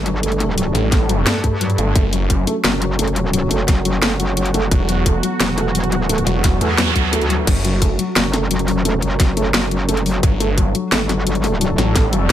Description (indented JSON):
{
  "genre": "dark technical drum and bass",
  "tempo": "174 BPM",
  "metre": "4/4",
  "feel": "straight",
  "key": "F# phrygian",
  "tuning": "A4 = 440 Hz",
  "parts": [
    { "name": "sweeping resonant pad", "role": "sustained chords", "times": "0.0-12.3 s", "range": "E3 to A4", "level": "-25 LUFS", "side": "right 2 dB", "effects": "chorus, sidechain pumping" },
    { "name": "metallic wobble bass", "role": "bass", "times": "0.0-12.3 s", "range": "E1 to G2", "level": "-20 LUFS", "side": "equal", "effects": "chorus" },
    { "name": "felt-muted upright piano", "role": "arpeggios", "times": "0.1-12.2 s", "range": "F#3 to A3", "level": "-22 LUFS", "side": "left 2 dB", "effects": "sidechain pumping, digital delay" },
    { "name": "drum and bass drum kit", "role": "drums", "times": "0.1-12.2 s", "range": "crash cymbal, hi-hat, snare drum", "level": "-20 LUFS", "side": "equal", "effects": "overdrive, studio reverb" },
    { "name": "snarling distorted saw bass", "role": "bass", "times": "0.7-2.5, 4.7-8.0, 10.2-12.3 s", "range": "E1 to A1", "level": "-18 LUFS", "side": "equal", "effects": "distortion, overdrive" },
    { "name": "electronic kick drum", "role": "drums", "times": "0.9-12.0 s", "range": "none", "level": "-16 LUFS", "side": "equal", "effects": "studio reverb" },
    { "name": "noise sweep", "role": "sound effects", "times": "6.5-7.5 s", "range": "none", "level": "-24 LUFS", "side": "right 6 dB", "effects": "none" }
  ],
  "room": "light reverb",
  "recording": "none",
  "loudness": "-15 LUFS",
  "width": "side -11 dB against mid",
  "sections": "0.0-12.3 A section",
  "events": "noise sweep 6.5-7.5",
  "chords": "0.0 G5; 2.0 F#5; 4.7 E5; 7.5 F#5; 10.2 G5",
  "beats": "0.23 | 0.58 0.92 1.27 1.61 | 1.96 2.30 2.65 2.99 | 3.33 3.68 4.03 4.37 | 4.71 5.06 5.40 5.75 | 6.09 6.44 6.78 7.13 | 7.47 7.82 8.16 8.51 | 8.85 9.20 9.54 9.89 | 10.23 10.58 10.92 11.27 | 11.61 11.96 12.30"
}